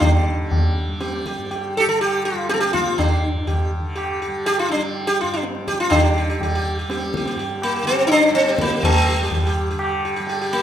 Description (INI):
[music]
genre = indian classical, Hindustani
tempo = 123 BPM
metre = 3/4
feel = straight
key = unclear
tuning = A4 = 438 Hz
[part]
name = sitar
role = melody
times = 0.0-10.6 s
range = A3 to A4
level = -20 LUFS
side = equal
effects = none
[part]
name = tanpura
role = drone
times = 0.0-10.6 s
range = G2 to G3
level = -29 LUFS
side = right 1 dB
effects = none
[part]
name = tabla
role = percussion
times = 0.0-10.6 s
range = none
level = -22 LUFS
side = equal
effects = none
[sound]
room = wet recital hall reverb, RT60 1.4 s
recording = minimal, uncompressed stereo recording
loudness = -18 LUFS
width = side -10 dB against mid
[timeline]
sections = 0.0-5.9 A section; 5.9-10.6 B section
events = speeding up 0.0-10.6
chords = none